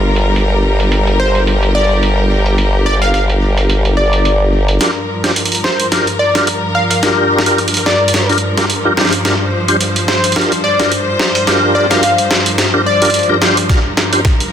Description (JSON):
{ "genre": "glitch hop", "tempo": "108 BPM", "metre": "4/4", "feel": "swing 56% on 16ths", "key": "G minor pentatonic", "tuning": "A4 = 439 Hz", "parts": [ { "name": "clear studio string section", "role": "sustained chords", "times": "0.0-14.5 s", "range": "G2 to C5", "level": "-18 LUFS", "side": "left 1 dB", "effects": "vintage 12-bit sampler grit, sidechain pumping" }, { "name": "formant-sweep wobble bass", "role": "bass", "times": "0.0-4.8 s", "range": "G1", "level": "-13 LUFS", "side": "equal", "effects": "chorus, tube saturation" }, { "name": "boom bap sampler-style drum kit", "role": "drums", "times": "0.2-14.5 s", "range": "hi-hat, snare drum", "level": "-16 LUFS", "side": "right 1 dB", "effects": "high-pass filter on hats, low-pass filter on hats, studio reverb, high-pass filter on cymbals, low-pass filter on cymbals, high-pass filter on snare, low-pass filter on snare" }, { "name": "plucky unison lead", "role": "melody", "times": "1.2-13.4 s", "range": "C5 to F5", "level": "-17 LUFS", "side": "left 1 dB", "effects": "digital delay" }, { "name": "tonewheel organ", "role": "stabs", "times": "4.8-14.2 s", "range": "D4 to C5", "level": "-16 LUFS", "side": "equal", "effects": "overdrive, chorus vibrato, slow rotary speaker, vintage 12-bit sampler grit, sidechain pumping, low-pass filter, digital delay" }, { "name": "electronic kick drum", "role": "drums", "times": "13.7-14.4 s", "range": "none", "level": "-12 LUFS", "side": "equal", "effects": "studio reverb" } ], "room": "moderate plate reverb, RT60 1.7 s, digital ambience", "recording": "dense, heavily limited modern master", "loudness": "-10 LUFS", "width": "side -9 dB against mid", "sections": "0.0-4.8 A section; 4.8-14.5 B section", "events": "build-up 4.8-14.5; drum fill 4.8-14.5; filter sweep on tonewheel organ 4.8-14.5", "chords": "0.0 Gm; 4.8 Gm7" }